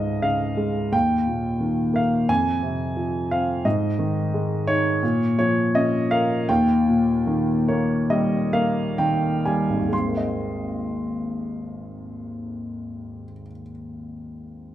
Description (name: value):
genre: classical, lyrical solo piano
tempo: 62-89 BPM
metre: 4/4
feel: rubato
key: Ab major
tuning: A4 = 440 Hz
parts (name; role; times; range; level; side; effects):
- dark grand piano; solo; 0.0-14.7 s; Ab1 to C6; -21 LUFS; equal; none
room: moderate recital hall reverb, RT60 1.8 s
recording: minimal, uncompressed stereo recording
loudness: -20 LUFS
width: side -12 dB against mid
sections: 0.0-9.9 A section; 9.9-13.7 B section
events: slowing down 3.7-9.9; grand piano fill 7.3-9.9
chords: 0.0 Db; 0.9 Eb5; 2.3 Fm; 3.7 Ab5; 5.0 Bbm; 6.5 Eb; 9.9 Abadd9